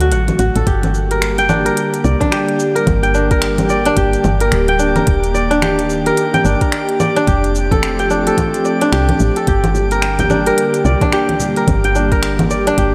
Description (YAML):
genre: organic downtempo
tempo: 109 BPM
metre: 4/4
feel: swing 60% on 16ths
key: G minor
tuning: A4 = 442 Hz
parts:
  - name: airy breathy pad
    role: sustained chords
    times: 0.0-12.9 s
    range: D3 to G4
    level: -22 LUFS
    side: equal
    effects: chorus, sidechain pumping, shimmer reverb
  - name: kora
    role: arpeggios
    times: 0.0-12.9 s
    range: D4 to G5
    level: -19 LUFS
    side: equal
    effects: delay, shimmer reverb
  - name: woody FM bass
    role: bass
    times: 0.0-12.9 s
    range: D1 to D2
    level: -20 LUFS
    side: equal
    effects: sidechain pumping
  - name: organic electronic drum kit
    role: drums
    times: 0.0-12.9 s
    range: congas, finger snaps, hi-hat, shaker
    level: -23 LUFS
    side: equal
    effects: none
  - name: congas and bongos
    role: percussion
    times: 0.4-0.6, 9.7-12.5 s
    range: none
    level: -28 LUFS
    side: equal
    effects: none
  - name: electronic kick drum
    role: drums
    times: 0.7-12.9 s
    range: none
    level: -20 LUFS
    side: equal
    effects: none
  - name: drifting glass-harmonics texture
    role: texture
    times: 1.9-12.9 s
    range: G4 to G5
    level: -29 LUFS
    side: equal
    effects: chorus, built-in reverb, shimmer reverb
room: light reverb, digital ambience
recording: faint mains hum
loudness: -15 LUFS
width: mono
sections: 0.7-12.9 A section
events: none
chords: 0.0 D; 0.7 Gm; 5.1 Ebmaj7; 7.3 Fadd9; 9.5 Gm